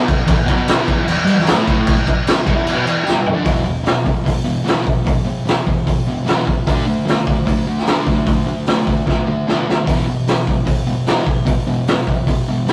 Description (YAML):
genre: garage rock duo or trio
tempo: 150 BPM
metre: 4/4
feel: straight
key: unclear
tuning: A4 = 440 Hz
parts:
  - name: fuzz guitar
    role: riff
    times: 0.0-12.7 s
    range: E2 to D4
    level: -21 LUFS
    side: equal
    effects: distortion
  - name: raw garage drum kit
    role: drums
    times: 0.1-12.7 s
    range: crash cymbal, hi-hat, kick drum, snare drum, toms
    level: -19 LUFS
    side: equal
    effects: none
  - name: tambourine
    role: percussion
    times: 0.7-3.2 s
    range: none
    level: -40 LUFS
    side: equal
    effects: none
room: moderate stone room reverb, RT60 1.0 s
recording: rough rehearsal-room recording, warm saturation, cassette tape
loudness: -17 LUFS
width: mono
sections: 0.0-3.5 A section; 3.5-12.7 B section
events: drum fill 3.1-3.5, 9.1-9.9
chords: 0.0 E5; 6.7 D5; 9.9 E5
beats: | 0.29 0.68 1.08 1.48 | 1.88 2.27 2.67 3.07 | 3.47 3.87 4.27 4.67 | 5.07 5.47 5.87 6.28 | 6.68 7.08 7.48 7.88 | 8.28 8.68 9.08 9.48 | 9.88 10.28 10.68 11.08 | 11.48 11.88 12.28 12.68